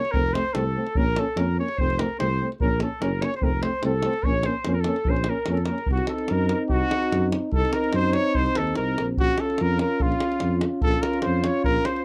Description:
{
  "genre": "balkan folk, Balkan brass band",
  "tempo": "146 BPM",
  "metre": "2/4",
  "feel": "swing 54% on 16ths",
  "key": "Bb harmonic minor",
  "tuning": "A4 = 440 Hz",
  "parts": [
    { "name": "warm trumpet", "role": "melody", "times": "0.0-12.0 s", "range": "F4 to Db5", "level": "-30 LUFS", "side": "equal", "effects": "none" },
    { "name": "clear clarinet", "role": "second line", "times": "0.0-12.0 s", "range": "F4 to Db5", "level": "-34 LUFS", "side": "equal", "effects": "none" },
    { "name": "dark euphonium", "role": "accompaniment", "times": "0.0-12.0 s", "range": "A3 to Db4", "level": "-32 LUFS", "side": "equal", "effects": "none" },
    { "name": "warm trombone", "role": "accompaniment", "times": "0.1-12.0 s", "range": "C4 to F4", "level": "-33 LUFS", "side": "equal", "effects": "none" },
    { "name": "dark tuba", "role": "bass", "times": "0.1-11.8 s", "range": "F1 to Gb2", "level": "-28 LUFS", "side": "equal", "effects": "none" },
    { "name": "davul", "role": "percussion", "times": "0.1-12.0 s", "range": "none", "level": "-30 LUFS", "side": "equal", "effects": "none" }
  ],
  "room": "little or no reverb",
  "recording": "dry, close 1970s-style studio recording",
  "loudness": "-24 LUFS",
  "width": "mono",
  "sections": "0.0-5.9 A section; 5.9-12.0 B section",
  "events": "none",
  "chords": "0.1 F; 1.0 Bbm; 1.8 F; 2.6 Bbm; 3.4 F; 4.2 Bbm; 5.9 Cdim; 9.2 Bbm",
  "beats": "| 0.14 0.55 | 0.96 1.37 | 1.78 2.19 | 2.60 3.02 | 3.43 3.84 | 4.25 4.66 | 5.07 5.48 | 5.89 6.30 | 6.71 7.12 | 7.54 7.95 | 8.36 8.77 | 9.18 9.59 | 10.01 10.42 | 10.83 11.24 | 11.65"
}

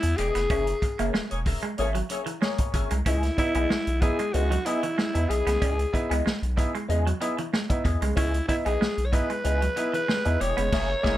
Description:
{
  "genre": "funk",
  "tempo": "94 BPM",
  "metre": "4/4",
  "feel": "straight",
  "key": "C# dorian",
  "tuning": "A4 = 440 Hz",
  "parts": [
    { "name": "breathy alto saxophone", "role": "melody", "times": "0.0-11.2 s", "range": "E4 to C#5", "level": "-27 LUFS", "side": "left 1 dB", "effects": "none" },
    { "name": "electric guitar at the edge of break-up", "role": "accompaniment", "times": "0.0-11.2 s", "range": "B3 to E5", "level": "-33 LUFS", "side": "left 3 dB", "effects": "wah" },
    { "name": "round analog bass", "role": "bass", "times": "0.0-11.2 s", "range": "E1 to E2", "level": "-27 LUFS", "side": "equal", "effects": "none" },
    { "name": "vintage drum kit", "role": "drums", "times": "0.0-11.2 s", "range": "crash cymbal, hi-hat, kick drum, snare drum", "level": "-28 LUFS", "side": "equal", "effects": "none" },
    { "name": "clean electric guitar", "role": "riff", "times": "0.2-10.7 s", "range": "E3 to C#4", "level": "-34 LUFS", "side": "right 4 dB", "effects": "spring reverb" },
    { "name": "mellow horn section", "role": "second line", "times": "1.3-2.9, 10.7-11.2 s", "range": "A#3 to C#5", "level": "-32 LUFS", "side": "left 4 dB", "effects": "none" },
    { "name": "bright upright piano", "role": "stabs", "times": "3.1-11.2 s", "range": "C#3 to E4", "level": "-31 LUFS", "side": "right 2 dB", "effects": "none" }
  ],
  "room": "light reverb",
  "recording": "none",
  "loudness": "-23 LUFS",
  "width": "side -14 dB against mid",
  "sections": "0.0-11.2 A section",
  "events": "band accent 0.5-3.1, 10.7-11.2",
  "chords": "0.0 C#m9 (rootless); 0.5 F#9; 3.1 C#m9",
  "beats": "| 0.50 1.14 1.78 2.42 | 3.06 3.70 4.34 4.98 | 5.62 6.25 6.89 7.53 | 8.17 8.81 9.45 10.09 | 10.72"
}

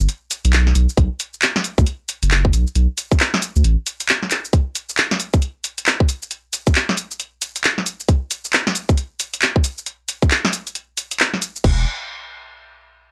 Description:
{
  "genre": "UK garage, two-step garage",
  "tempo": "135 BPM",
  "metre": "4/4",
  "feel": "swing 62% on 16ths",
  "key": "unclear",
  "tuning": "A4 = 438 Hz",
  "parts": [
    { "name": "saturated sub bass", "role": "bass", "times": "0.0-3.8, 11.6-11.8 s", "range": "E1 to D2", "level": "-18 LUFS", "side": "equal", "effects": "sidechain pumping" },
    { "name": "garage drum kit", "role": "drums", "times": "0.0-11.8 s", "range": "crash cymbal, handclaps, hi-hat, shaker, snare drum", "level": "-21 LUFS", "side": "equal", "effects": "none" },
    { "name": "electronic kick drum", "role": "drums", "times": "1.0-11.8 s", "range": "none", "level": "-18 LUFS", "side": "equal", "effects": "none" }
  ],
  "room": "little or no reverb",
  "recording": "dry, gritty hardware recording, cassette tape, faint mains hum",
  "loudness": "-19 LUFS",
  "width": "mono",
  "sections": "0.0-11.6 A section; 11.6-13.1 B section",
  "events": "none",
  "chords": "none",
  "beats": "0.09 0.53 | 0.98 1.42 1.86 2.31 | 2.75 3.20 3.64 4.09 | 4.53 4.98 5.42 5.87 | 6.31 6.75 7.20 7.64 | 8.09 8.53 8.98 9.42 | 9.87 10.31 10.75 11.20 | 11.64"
}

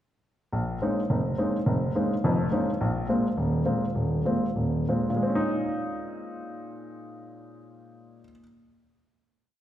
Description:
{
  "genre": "jazz",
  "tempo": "179-211 BPM",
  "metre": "4/4",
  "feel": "swing 60% on 8ths",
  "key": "Bb minor",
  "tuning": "A4 = 440 Hz",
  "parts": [
    { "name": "dark baby grand piano", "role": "solo", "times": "0.5-8.4 s", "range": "Eb1 to Eb4", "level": "-25 LUFS", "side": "equal", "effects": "none" }
  ],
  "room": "wet recital hall reverb, RT60 1.8 s",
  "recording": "recorded in a church or concert hall",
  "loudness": "-24 LUFS",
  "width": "side -12 dB against mid",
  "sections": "0.5-5.2 A section; 5.2-7.9 final chord",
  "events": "slowing down 2.8-5.2",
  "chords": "0.5 Bbm11; 2.8 Abadd9; 5.2 Bbm11",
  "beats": "| 0.52 0.80 1.08 1.37 | 1.65 1.94 2.22 2.51 | 2.79 3.08 3.36 3.65 | 3.95 4.25 4.56 4.88 | 5.21 5.54 5.88 6.21 | 6.55 6.88 7.22 7.55"
}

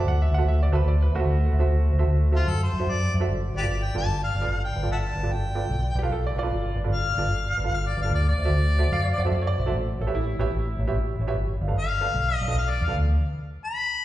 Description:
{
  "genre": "blues",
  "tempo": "149 BPM",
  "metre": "4/4",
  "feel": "swing 66% on 8ths",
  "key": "unclear",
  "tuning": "A4 = 440 Hz",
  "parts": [
    { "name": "bright upright piano", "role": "second line", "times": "0.0-2.3, 6.0-11.3 s", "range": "A3 to F#5", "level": "-32 LUFS", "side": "right 2 dB", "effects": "plate reverb, slapback echo" },
    { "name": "warm upright piano", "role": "accompaniment", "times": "0.0-12.9 s", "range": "F4 to F#5", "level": "-31 LUFS", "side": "right 4 dB", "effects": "plate reverb, slapback echo" },
    { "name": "vintage muted fingered electric bass", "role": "bass", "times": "0.0-13.2 s", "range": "G1 to F#2", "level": "-23 LUFS", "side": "equal", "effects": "none" },
    { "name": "mellow harmonica", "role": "melody", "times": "2.4-14.0 s", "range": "F4 to B5", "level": "-28 LUFS", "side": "left 3 dB", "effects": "plate reverb, slapback echo, digital delay" }
  ],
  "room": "light reverb",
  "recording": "live gig heard through the venue's PA, recital hall reverb",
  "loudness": "-22 LUFS",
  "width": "side -14 dB against mid",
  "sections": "0.0-14.0 A section",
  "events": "none",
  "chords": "0.0 D7; 3.3 G7; 8.1 D7; 9.7 A7; 11.3 G7; 12.9 D5",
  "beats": "| 0.06 0.46 0.86 1.26 | 1.67 2.07 2.47 2.88 | 3.28 3.68 4.08 4.49 | 4.89 5.29 5.70 6.10 | 6.50 6.90 7.31 7.71 | 8.11 8.52 8.92 9.32 | 9.72 10.13 10.53 10.93 | 11.34 11.74 12.14 12.54 | 12.95 13.35 13.75"
}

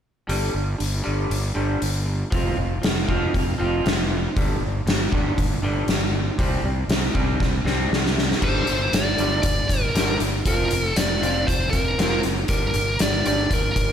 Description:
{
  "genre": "quiet-loud alternative rock",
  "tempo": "118 BPM",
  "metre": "4/4",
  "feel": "straight",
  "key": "G minor",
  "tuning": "A4 = 441 Hz",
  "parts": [
    { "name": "electric guitar through a small old amp", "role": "arpeggios", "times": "0.3-13.9 s", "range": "G2 to F4", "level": "-27 LUFS", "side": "right 1 dB", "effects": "slapback echo, digital delay" },
    { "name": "fuzz fingered electric bass", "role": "bass", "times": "0.3-13.9 s", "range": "F1 to C2", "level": "-25 LUFS", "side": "equal", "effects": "overdrive" },
    { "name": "oversized low-tuned drum kit", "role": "drums", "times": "0.3-13.9 s", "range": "crash cymbal, hi-hat, kick drum, snare drum", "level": "-23 LUFS", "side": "equal", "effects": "none" },
    { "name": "high-gain lead guitar", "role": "melody", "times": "8.4-13.9 s", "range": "Bb4 to D5", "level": "-24 LUFS", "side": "equal", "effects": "distortion" }
  ],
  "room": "moderate lush hall reverb, RT60 1.6 s, small room ambience",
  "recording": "big arena sound",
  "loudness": "-20 LUFS",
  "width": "side -9 dB against mid",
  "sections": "0.3-8.4 A section; 8.4-13.9 B section",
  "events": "drum fill 7.4-8.4",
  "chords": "0.3 G5; 2.3 F5; 4.4 G5; 6.4 C5; 8.4 Gm; 10.5 Fsus4; 12.5 Gm",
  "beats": "| 0.29 0.80 1.31 1.82 | 2.33 2.83 3.34 3.85 | 4.36 4.87 5.38 5.89 | 6.39 6.90 7.41 7.92 | 8.43 8.93 9.44 9.95 | 10.46 10.97 11.47 11.98 | 12.49 13.00 13.51"
}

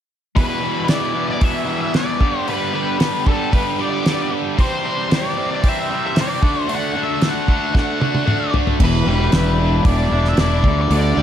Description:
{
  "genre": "classic rock",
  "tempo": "114 BPM",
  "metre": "4/4",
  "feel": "straight",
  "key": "E minor",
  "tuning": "A4 = 437 Hz",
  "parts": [
    { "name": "octave-fuzz lead guitar", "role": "melody", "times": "0.4-11.2 s", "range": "A4 to F#5", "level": "-23 LUFS", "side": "left 3 dB", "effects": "wah, distortion, slapback echo" },
    { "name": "cranked stack guitar", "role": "riff", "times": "0.4-11.2 s", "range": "E2 to G4", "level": "-24 LUFS", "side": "left 11 dB", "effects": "overdrive" },
    { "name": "overdriven electric guitar", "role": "riff", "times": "0.4-11.2 s", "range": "E2 to E4", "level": "-24 LUFS", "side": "right 11 dB", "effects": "phaser" },
    { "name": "damped 70s drum kit", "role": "drums", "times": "0.4-11.0 s", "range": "crash cymbal, hi-hat, kick drum, snare drum, toms", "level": "-18 LUFS", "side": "equal", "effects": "none" },
    { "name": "fuzz fingered electric bass", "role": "bass", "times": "8.8-11.2 s", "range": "E1 to D2", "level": "-17 LUFS", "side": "equal", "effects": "overdrive" }
  ],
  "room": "light reverb, small room ambience",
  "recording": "none",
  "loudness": "-16 LUFS",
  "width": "side -10 dB against mid",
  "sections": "0.4-8.8 A section; 8.8-11.2 B section",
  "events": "drum fill 7.7-8.8",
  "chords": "0.4 Em; 2.2 G; 4.6 C; 6.4 D; 8.8 Em7; 10.6 G5/D",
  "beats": "| 0.37 0.90 1.42 1.95 | 2.48 3.00 3.53 4.05 | 4.58 5.11 5.64 6.16 | 6.69 7.22 7.75 8.27 | 8.80 9.32 9.85 10.38 | 10.90"
}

